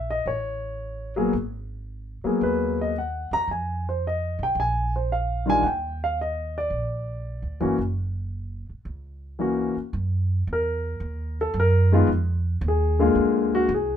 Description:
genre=jazz piano trio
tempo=112 BPM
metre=4/4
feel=swing 69% on 8ths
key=unclear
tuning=A4 = 440 Hz
part: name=warm grand piano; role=melody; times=0.0-14.0 s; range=D3 to Bb5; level=-23 LUFS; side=left 2 dB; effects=none
part: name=upright bass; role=bass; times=0.0-14.0 s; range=Gb1 to F#2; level=-26 LUFS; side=right 1 dB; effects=none
room=light reverb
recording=minimal, uncompressed stereo recording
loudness=-22 LUFS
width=side -9 dB against mid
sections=0.0-9.9 A section; 9.9-14.0 B section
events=grand piano solo 9.9-14.0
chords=0.3 A; 1.3 Abm9; 3.5 Fm7b5; 4.6 Bb5; 5.6 Ebmaj7(no3); 7.8 Gb5; 9.9 Bmaj7 (rootless); 12.1 D#sus24; 13.2 A#7

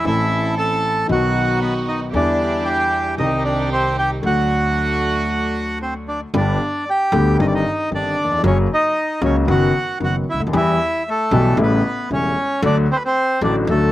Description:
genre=tango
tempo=114 BPM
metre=4/4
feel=rubato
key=G major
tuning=A4 = 440 Hz
part: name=bandoneon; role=melody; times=0.0-13.9 s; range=A3 to A5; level=-20 LUFS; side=right 1 dB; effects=none
part: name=warm concert grand piano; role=accompaniment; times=0.0-13.9 s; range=E1 to A4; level=-20 LUFS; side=left 2 dB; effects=none
part: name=rich chamber string section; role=stabs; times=0.0-6.2 s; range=A3 to A4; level=-27 LUFS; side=right 4 dB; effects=slapback echo
part: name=upright bass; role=bass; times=0.1-13.9 s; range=E1 to E2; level=-23 LUFS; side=right 2 dB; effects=none
room=light reverb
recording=recorded outdoors, with no room sound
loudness=-16 LUFS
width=side -15 dB against mid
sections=0.0-6.3 A section; 6.3-13.9 A section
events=none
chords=0.1 Am; 1.1 B; 2.1 Em7; 3.2 Cm; 4.2 D; 6.3 G; 7.4 Cm/G; 8.4 F#; 9.5 B/F#; 10.5 Em; 11.6 A7; 12.6 D

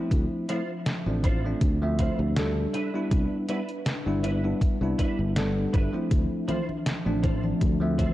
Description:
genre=vaporwave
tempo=80 BPM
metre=4/4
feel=swing 54% on 16ths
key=unclear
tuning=A4 = 440 Hz
part: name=bell-like tine electric piano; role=accompaniment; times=0.0-8.1 s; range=F3 to E5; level=-29 LUFS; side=equal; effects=lush chorus, analog delay
part: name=warbly tape-like pad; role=sustained chords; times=0.0-8.1 s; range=F3 to E5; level=-35 LUFS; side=left 1 dB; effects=chorus, built-in reverb
part: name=sustaining fretless electric bass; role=bass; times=0.1-8.1 s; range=G1 to D2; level=-28 LUFS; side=equal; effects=none
part: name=detuned 8-bit digital drum machine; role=drums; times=0.1-8.1 s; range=congas, hi-hat, snare drum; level=-32 LUFS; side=left 1 dB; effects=vintage 12-bit sampler grit
part: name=electronic kick drum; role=drums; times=0.1-8.1 s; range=none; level=-25 LUFS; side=equal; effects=vintage 12-bit sampler grit
part: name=twelve-string electric guitar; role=riff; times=0.5-8.1 s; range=D4 to C5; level=-36 LUFS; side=right 2 dB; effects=ensemble chorus, analog delay
room=little or no reverb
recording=dry, gritty hardware recording, cassette tape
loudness=-24 LUFS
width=side -15 dB against mid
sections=0.0-8.1 A section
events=none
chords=0.1 Dm9; 2.7 Cmaj9; 6.1 Dm9

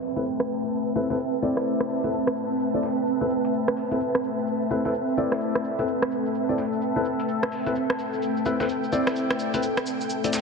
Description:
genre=bass house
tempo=128 BPM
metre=4/4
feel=swing 62% on 16ths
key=A minor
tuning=A4 = 440 Hz
part: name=sweeping resonant pad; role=sustained chords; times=0.0-10.4 s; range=A3 to B4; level=-28 LUFS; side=left 2 dB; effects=chorus
part: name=dusty soul sampler-style drum kit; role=drums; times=0.0-10.4 s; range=hi-hat, shaker, snare drum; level=-38 LUFS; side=equal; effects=high-pass filter on perc, low-pass filter on perc, high-pass filter on hats, low-pass filter on hats, high-pass filter on snare, low-pass filter on snare
part: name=electronic shaker and rim click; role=drums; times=0.0-10.4 s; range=none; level=-30 LUFS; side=right 1 dB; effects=overdrive, low-pass filter on hats, low-pass filter on snare, low-pass filter on perc
part: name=downlifter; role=sound effects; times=0.0-1.7 s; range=none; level=-46 LUFS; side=right 1 dB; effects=none
part: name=ethereal airy pad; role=texture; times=0.0-10.4 s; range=C4 to A5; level=-28 LUFS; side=right 3 dB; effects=ensemble chorus, built-in reverb
part: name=dark concert grand piano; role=stabs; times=0.2-10.3 s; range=C4 to D5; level=-28 LUFS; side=left 3 dB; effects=tape echo
room=wet lush hall reverb, RT60 2.3 s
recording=dense, heavily limited modern master, low-pass filter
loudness=-23 LUFS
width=side -4 dB against mid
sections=0.0-10.4 A section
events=filter sweep on drum 0.0-10.4; filter sweep 0.0-10.4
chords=0.0 Amadd9

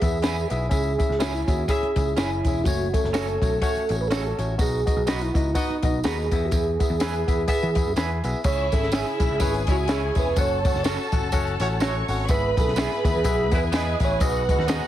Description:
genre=uptempo 1960s-style soul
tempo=124 BPM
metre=4/4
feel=swing 58% on 8ths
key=E major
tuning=A4 = 440 Hz
part: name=mellow tonewheel organ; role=melody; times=0.0-14.7 s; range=D#4 to D#5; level=-26 LUFS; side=right 3 dB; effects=fast rotary speaker
part: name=barky tine electric piano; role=accompaniment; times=0.0-14.9 s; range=G#2 to F#5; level=-29 LUFS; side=left 4 dB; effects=overdrive, auto-pan
part: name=picked electric bass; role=bass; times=0.0-14.8 s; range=E1 to E3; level=-28 LUFS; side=equal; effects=none
part: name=compact cocktail drum kit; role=drums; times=0.0-14.8 s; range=crash cymbal, hi-hat, kick drum, snare drum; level=-25 LUFS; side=equal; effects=none
part: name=tambourine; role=percussion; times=0.0-14.8 s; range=none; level=-38 LUFS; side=right 4 dB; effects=none
part: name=electric guitar at the edge of break-up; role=stabs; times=0.2-14.8 s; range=B3 to B4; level=-34 LUFS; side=right 5 dB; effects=spring reverb
part: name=warm horn section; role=second line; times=1.7-14.2 s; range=G#3 to E5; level=-33 LUFS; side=equal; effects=slapback echo
part: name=rich studio string section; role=second line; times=8.4-14.9 s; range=E4 to C#6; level=-31 LUFS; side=equal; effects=none
room=light reverb, small room ambience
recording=heavily compressed radio sound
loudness=-21 LUFS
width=side -12 dB against mid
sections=0.0-8.4 A section; 8.4-14.9 B section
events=none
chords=0.0 E; 0.7 C#m; 2.7 F#m; 4.6 B; 6.3 E; 8.4 C#m; 10.4 F#m; 12.3 E/G#; 14.2 B6

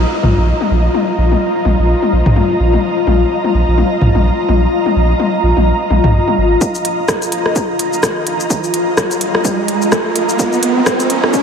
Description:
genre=minimal techno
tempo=127 BPM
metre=4/4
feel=swing 58% on 16ths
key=unclear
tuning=A4 = 441 Hz
part: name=saturated sub bass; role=bass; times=0.0-11.4 s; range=Ab1 to Bb1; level=-16 LUFS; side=right 1 dB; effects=sidechain pumping, high-pass filter
part: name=ethereal airy pad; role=texture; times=0.0-11.4 s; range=F4 to Bb5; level=-16 LUFS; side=left 1 dB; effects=ensemble chorus, built-in reverb, sidechain pumping
part: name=swarming drone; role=texture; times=0.8-6.6 s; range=F3 to F4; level=-25 LUFS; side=left 3 dB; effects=built-in reverb, phaser, sidechain pumping
part: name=electronic toms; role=percussion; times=0.2-6.4 s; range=none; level=-18 LUFS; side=left 4 dB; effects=diffuse ambient delay
part: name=electronic kick drum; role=drums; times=6.6-11.4 s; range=none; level=-20 LUFS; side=right 1 dB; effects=high-pass filter on kick
part: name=garage drum kit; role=drums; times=6.6-11.4 s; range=hi-hat, rim click, shaker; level=-19 LUFS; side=equal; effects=low-pass filter on snare, low-pass filter on perc, low-pass filter on hats, low-pass filter on room
part: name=riser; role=sound effects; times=8.3-11.4 s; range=none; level=-18 LUFS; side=right 2 dB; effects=none
room=moderate huge ambient reverb, RT60 8.2 s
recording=dreamy mix soaked in reverb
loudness=-12 LUFS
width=side -7 dB against mid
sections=0.0-6.6 A section; 6.6-11.4 B section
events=build-up 6.6-11.4; riser 8.3-11.4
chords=0.0 Bbsus4

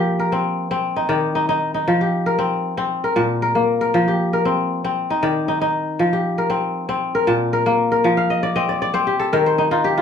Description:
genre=west african traditional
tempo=117 BPM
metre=4/4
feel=straight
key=F mixolydian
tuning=A4 = 440 Hz
part: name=kora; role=solo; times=0.0-10.0 s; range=Bb2 to A5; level=-17 LUFS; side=left 1 dB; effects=none
room=light reverb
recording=studio ambience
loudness=-17 LUFS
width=side -7 dB against mid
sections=0.0-10.0 A section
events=kora fill 8.2-10.0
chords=0.0 F5; 0.8 N.C.; 1.9 F5; 2.9 N.C.; 3.9 F5; 5.0 N.C.; 6.0 F5; 7.0 N.C.; 8.0 F5; 9.1 N.C.

